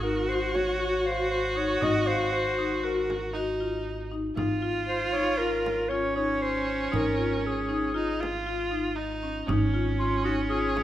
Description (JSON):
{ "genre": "contemporary instrumental, chamber music in an uneven meter", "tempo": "117 BPM", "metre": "5/4", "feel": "straight", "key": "unclear", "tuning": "A4 = 440 Hz", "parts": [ { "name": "bright clarinet", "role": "melody", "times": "0.0-10.8 s", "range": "F4 to Eb5", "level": "-29 LUFS", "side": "left 1 dB", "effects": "none" }, { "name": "clear viola", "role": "second line", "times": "0.0-10.8 s", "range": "Db4 to Gb4", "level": "-30 LUFS", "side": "right 2 dB", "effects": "none" }, { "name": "marimba with medium hard mallets", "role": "arpeggios", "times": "0.0-10.8 s", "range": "Db4 to F5", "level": "-30 LUFS", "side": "left 4 dB", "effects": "none" }, { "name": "upright bass", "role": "bass", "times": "0.0-10.8 s", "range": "Ab1", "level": "-34 LUFS", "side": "right 2 dB", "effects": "none" }, { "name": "frame drum", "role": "percussion", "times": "0.0-10.8 s", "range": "none", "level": "-36 LUFS", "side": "right 3 dB", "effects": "none" } ], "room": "moderate recital hall reverb, RT60 1.7 s", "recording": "none", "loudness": "-25 LUFS", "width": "side -12 dB against mid", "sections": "0.0-10.8 A section", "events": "none", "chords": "0.0 Ab7; 4.4 Bbm/Ab (rootless)", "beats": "0.28 0.79 1.30 | 1.82 2.33 2.84 3.35 3.86 | 4.37 4.88 5.40 5.91 6.42 | 6.93 7.44 7.95 8.47 8.98 | 9.49 10.00 10.51" }